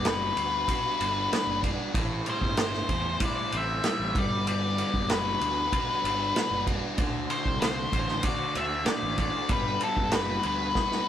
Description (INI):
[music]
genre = psychedelic rock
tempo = 95 BPM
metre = 4/4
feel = straight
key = unclear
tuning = A4 = 441 Hz
[part]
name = octave-fuzz lead guitar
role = melody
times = 0.0-11.1 s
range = A4 to E5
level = -29 LUFS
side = left 4 dB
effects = distortion
[part]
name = mellow tonewheel organ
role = sustained chords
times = 0.0-11.1 s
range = G3 to C5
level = -37 LUFS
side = right 5 dB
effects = chorus vibrato
[part]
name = thick fuzz guitar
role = riff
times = 0.0-11.1 s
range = A2 to C5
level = -33 LUFS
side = left 1 dB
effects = distortion, phaser
[part]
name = fuzz fingered electric bass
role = bass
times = 0.0-10.7 s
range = F#1 to E2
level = -35 LUFS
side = right 1 dB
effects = overdrive
[part]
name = vintage drum kit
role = drums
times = 0.0-11.1 s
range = kick drum, ride cymbal, snare drum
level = -30 LUFS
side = right 1 dB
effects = none
[sound]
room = light reverb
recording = rough rehearsal-room recording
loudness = -25 LUFS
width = side -10 dB against mid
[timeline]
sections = 0.0-11.1 A section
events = drum fill 10.8-11.1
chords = 0.0 Gmaj7; 1.9 Am7; 4.1 Gmaj7; 7.0 D7; 9.5 Gmaj7